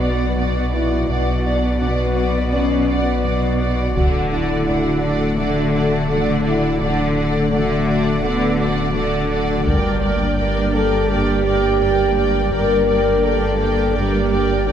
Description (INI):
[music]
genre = cinematic, hybrid orchestral and electronic film score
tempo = 84 BPM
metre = 4/4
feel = straight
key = unclear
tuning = A4 = 440 Hz
[part]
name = warm symphonic violin section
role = second line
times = 0.0-14.7 s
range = D5 to G5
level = -27 LUFS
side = equal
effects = none
[part]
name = rich studio viola section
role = accompaniment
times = 0.0-14.7 s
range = A4 to D5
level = -25 LUFS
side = equal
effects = none
[part]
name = airy breathy pad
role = sustained chords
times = 0.0-14.7 s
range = F#3 to D5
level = -24 LUFS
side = equal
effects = chorus
[part]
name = mellow French horn section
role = sustained chords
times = 0.0-14.7 s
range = A3 to Bb4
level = -22 LUFS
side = left 1 dB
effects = none
[part]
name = rich studio cello section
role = bass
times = 0.0-14.7 s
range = G2 to D3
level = -23 LUFS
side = right 1 dB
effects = none
[part]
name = saturated sub bass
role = bass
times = 0.0-14.7 s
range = D1 to B1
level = -24 LUFS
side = equal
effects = none
[part]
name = sub drop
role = sound effects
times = 0.0-1.1 s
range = none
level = barely audible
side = none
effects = none
[part]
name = taiko ensemble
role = drums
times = 4.0-5.3, 9.7-11.0 s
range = none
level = -23 LUFS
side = equal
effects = none
[sound]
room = wet concert hall reverb, RT60 2.3 s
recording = heard from further back in the room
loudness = -16 LUFS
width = side -9 dB against mid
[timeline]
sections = 0.0-14.7 A section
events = impact 0.0-1.1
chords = 0.0 Bm; 3.9 D; 9.7 Gm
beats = 0.37 | 1.09 1.80 2.52 3.23 | 3.94 4.66 5.37 6.09 | 6.80 7.52 8.23 8.95 | 9.66 10.37 11.09 11.80 | 12.52 13.23 13.95 14.66